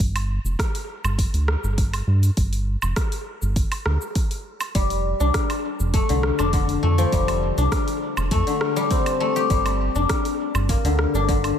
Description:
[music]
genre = organic downtempo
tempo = 101 BPM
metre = 4/4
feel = straight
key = G minor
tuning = A4 = 438 Hz
[part]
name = round analog bass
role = bass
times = 0.0-11.5 s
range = F1 to G2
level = -22 LUFS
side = equal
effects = none
[part]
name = deep house drum kit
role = drums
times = 0.0-11.6 s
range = hi-hat, rim click, shaker, woodblock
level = -30 LUFS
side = right 1 dB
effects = small room ambience
[part]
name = electronic kick drum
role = drums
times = 0.0-11.4 s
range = none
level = -24 LUFS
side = equal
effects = small room ambience
[part]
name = guzheng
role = arpeggios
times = 4.8-11.6 s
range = D3 to G4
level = -22 LUFS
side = left 4 dB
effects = tape echo
[sound]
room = light reverb, digital ambience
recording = none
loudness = -20 LUFS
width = side -9 dB against mid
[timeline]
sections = 0.0-11.6 A section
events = none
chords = 0.0 G5; 4.8 F; 9.5 Gm

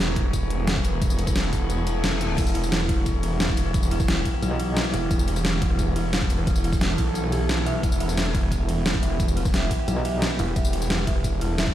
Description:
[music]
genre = dark technical drum and bass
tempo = 176 BPM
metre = 4/4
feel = straight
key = E minor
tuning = A4 = 439 Hz
[part]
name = metallic inharmonic drone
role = sustained chords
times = 0.0-11.7 s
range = E3 to A4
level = -29 LUFS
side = equal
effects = chorus, built-in reverb, sidechain pumping
[part]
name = snarling distorted saw bass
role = bass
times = 0.0-11.7 s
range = E1 to B1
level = -26 LUFS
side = equal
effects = distortion, overdrive, sidechain pumping
[part]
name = dubstep drum kit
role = drums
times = 0.1-11.7 s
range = crash cymbal, hi-hat, ride cymbal, rim click, snare drum, tambourine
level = -28 LUFS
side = equal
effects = overdrive
[part]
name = electronic kick drum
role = drums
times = 0.2-11.7 s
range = none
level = -24 LUFS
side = equal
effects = overdrive
[part]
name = reverse cymbal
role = sound effects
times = 1.8-2.4 s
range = none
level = -36 LUFS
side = left 4 dB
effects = none
[part]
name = dark detuned synth bell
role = arpeggios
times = 2.4-11.7 s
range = E4 to E5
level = -32 LUFS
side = right 2 dB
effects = chorus, sidechain pumping, digital delay
[part]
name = metallic wobble bass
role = bass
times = 4.4-4.9, 9.9-10.4 s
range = B1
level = -25 LUFS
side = equal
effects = chorus
[sound]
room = light reverb, digital ambience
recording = played on a big sound system in a bare room, stone room reverb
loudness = -21 LUFS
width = side -12 dB against mid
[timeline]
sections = 0.0-11.7 A section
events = reverse cymbal 1.8-2.4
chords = 0.0 Em

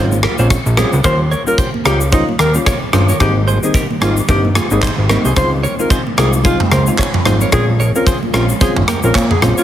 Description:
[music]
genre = afrobeats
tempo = 111 BPM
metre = 4/4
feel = swing 58% on 16ths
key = unclear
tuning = A4 = 440 Hz
[part]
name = soft electric-piano-like synth keys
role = accompaniment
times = 0.0-9.6 s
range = G3 to F4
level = -20 LUFS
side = left 2 dB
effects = chorus, tremolo
[part]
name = direct-recorded clean electric guitar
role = riff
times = 0.0-9.6 s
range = Eb4 to Db5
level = -23 LUFS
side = right 4 dB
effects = wide subtle chorus, ping-pong delay
[part]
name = fat analog bass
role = bass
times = 0.0-9.5 s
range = G1 to Bb2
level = -15 LUFS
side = equal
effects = none
[part]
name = big rock drum kit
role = drums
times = 0.1-9.6 s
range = handclaps, kick drum, rim click, shaker, toms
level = -16 LUFS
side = equal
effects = none
[part]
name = congas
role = percussion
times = 0.1-9.6 s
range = none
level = -26 LUFS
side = right 6 dB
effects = none
[part]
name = breathy alto saxophone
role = melody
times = 0.8-9.6 s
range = Eb4 to C5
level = -21 LUFS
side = left 1 dB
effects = ping-pong delay
[part]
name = ethereal airy pad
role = sustained chords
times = 2.4-9.6 s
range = Eb3 to G4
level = -25 LUFS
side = equal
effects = ensemble chorus, built-in reverb, phaser
[sound]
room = small room ambience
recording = heavily compressed radio sound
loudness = -11 LUFS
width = side -11 dB against mid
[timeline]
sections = 0.0-1.0 A section; 1.0-9.6 B section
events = none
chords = 0.0 Dbmaj7; 1.0 Eb7; 3.2 Abmaj7; 5.4 Dbmaj7; 7.5 Bbm7

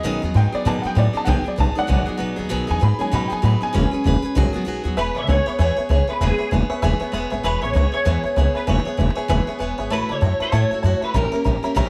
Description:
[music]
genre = rock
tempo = 195 BPM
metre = 4/4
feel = swing 60% on 8ths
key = E major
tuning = A4 = 440 Hz
[part]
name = honky-tonk upright piano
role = accompaniment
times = 0.0-11.9 s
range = D#3 to B5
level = -29 LUFS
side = equal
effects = none
[part]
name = picked steel-string acoustic guitar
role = accompaniment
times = 0.0-11.9 s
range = A#2 to C#5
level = -28 LUFS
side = equal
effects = none
[part]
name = upright bass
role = bass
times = 0.0-11.9 s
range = E1 to B2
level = -22 LUFS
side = equal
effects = none
[part]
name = electric guitar through a small old amp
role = melody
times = 5.0-11.4 s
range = G#4 to E5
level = -26 LUFS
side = equal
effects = ensemble chorus, tape echo
[sound]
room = light reverb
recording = none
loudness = -20 LUFS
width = mono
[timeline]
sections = 0.0-5.0 A section; 5.0-11.9 B section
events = honky-tonk piano solo 0.0-5.0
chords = 0.0 B6; 3.7 E6; 4.4 B6; 5.0 E6; 9.9 A6; 11.1 A#dim7

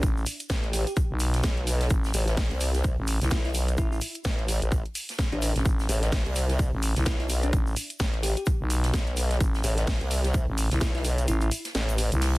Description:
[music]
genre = bass house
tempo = 128 BPM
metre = 4/4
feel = swing 59% on 16ths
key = A minor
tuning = A4 = 439 Hz
[part]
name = bell-like FM electric piano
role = melody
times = 0.0-11.5 s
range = D4 to G4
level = -35 LUFS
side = equal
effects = chorus, tape echo
[part]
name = growling FM bass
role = bass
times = 0.0-12.4 s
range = A1 to C2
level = -25 LUFS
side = equal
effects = overdrive, sidechain pumping
[part]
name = electronic kick drum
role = drums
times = 0.0-10.9 s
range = none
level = -26 LUFS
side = equal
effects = none
[part]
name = garage drum kit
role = drums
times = 0.0-12.4 s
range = hi-hat, snare drum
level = -33 LUFS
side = equal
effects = none
[part]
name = open jazz drum kit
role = drums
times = 0.0-12.3 s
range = hi-hat, shaker, snare drum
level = -40 LUFS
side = equal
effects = sidechain pumping on hats, high-pass filter on hats, high-pass filter on snare, sidechain pumping on perc, high-pass filter on perc, high-pass filter on room
[part]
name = egg shaker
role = percussion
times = 0.0-12.3 s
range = none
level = -40 LUFS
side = right 2 dB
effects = none
[part]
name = formant-sweep wobble bass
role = bass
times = 0.5-12.1 s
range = A1 to C2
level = -26 LUFS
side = equal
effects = chorus, overdrive, sidechain pumping
[sound]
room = studio reverb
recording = dense, heavily limited modern master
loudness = -24 LUFS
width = side -20 dB against mid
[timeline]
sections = 0.0-12.4 A section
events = kick drops out 11.3-12.4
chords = 0.0 Am

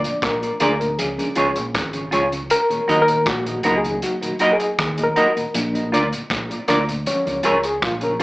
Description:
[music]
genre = roots reggae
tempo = 79 BPM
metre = 4/4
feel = straight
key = Eb minor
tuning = A4 = 440 Hz
[part]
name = mellow tonewheel organ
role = accompaniment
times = 0.0-8.2 s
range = Eb2 to Eb4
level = -28 LUFS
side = left 1 dB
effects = slow rotary speaker, tape echo, slapback echo
[part]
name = reed electric piano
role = stabs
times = 0.0-8.2 s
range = F3 to D5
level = -21 LUFS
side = left 1 dB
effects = fast tremolo
[part]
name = deep dub fingered electric bass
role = bass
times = 0.0-8.2 s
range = Ab1 to Eb2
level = -28 LUFS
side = equal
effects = none
[part]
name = crunchy breakbeat drum kit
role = drums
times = 0.0-8.2 s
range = hi-hat, kick drum, rim click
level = -26 LUFS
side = equal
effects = none
[part]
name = semi-hollow electric guitar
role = accompaniment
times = 0.6-8.2 s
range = F4 to Eb5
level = -21 LUFS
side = right 1 dB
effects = lush chorus, tape echo, slapback echo
[sound]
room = moderate club reverb, RT60 0.6 s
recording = live gig heard through the venue's PA, club reverb, AM radio sound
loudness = -17 LUFS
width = side -20 dB against mid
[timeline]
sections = 0.0-8.2 A section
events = reed electric piano solo 0.0-8.2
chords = 0.0 Bb; 1.0 Db; 2.5 Ebm; 5.5 Bb; 7.1 Db

